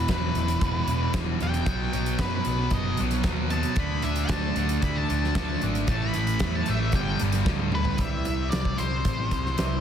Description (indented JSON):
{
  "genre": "quiet-loud alternative rock",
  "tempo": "114 BPM",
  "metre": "4/4",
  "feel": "straight",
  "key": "E minor",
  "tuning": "A4 = 441 Hz",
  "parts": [
    { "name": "octave-fuzz lead guitar", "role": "melody", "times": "0.0-9.8 s", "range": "B4 to B5", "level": "-32 LUFS", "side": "left 2 dB", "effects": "distortion, digital delay" },
    { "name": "distorted electric guitar", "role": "riff", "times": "0.0-9.8 s", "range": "E2 to D4", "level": "-32 LUFS", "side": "left 12 dB", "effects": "overdrive" },
    { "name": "thick fuzz guitar", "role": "riff", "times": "0.0-8.0 s", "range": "E2 to D4", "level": "-30 LUFS", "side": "right 11 dB", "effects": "distortion" },
    { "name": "overdriven picked electric bass", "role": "bass", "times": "0.0-9.8 s", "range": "E1 to F#2", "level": "-29 LUFS", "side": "equal", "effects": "none" },
    { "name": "big rock drum kit", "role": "drums", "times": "0.1-9.7 s", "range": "hi-hat, kick drum, snare drum, toms", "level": "-29 LUFS", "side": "equal", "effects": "none" },
    { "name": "picked old ladder-braced acoustic guitar", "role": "arpeggios", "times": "8.0-9.8 s", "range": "C3 to G3", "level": "-37 LUFS", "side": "right 6 dB", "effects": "digital delay" }
  ],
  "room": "light reverb",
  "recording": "dense, heavily limited modern master",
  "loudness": "-23 LUFS",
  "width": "side -8 dB against mid",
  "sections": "0.0-8.0 A section; 8.0-9.8 B section",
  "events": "lead electric guitar solo 0.0-8.0; drum fill 7.5-8.0",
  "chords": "0.0 E5; 1.7 B; 3.8 D5; 5.9 A5; 6.9 G5; 8.0 C",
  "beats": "0.10 0.62 1.15 | 1.68 2.20 2.73 3.26 | 3.78 4.31 4.84 5.36 | 5.89 6.42 6.94 7.47 | 8.00 8.53 9.05 9.58"
}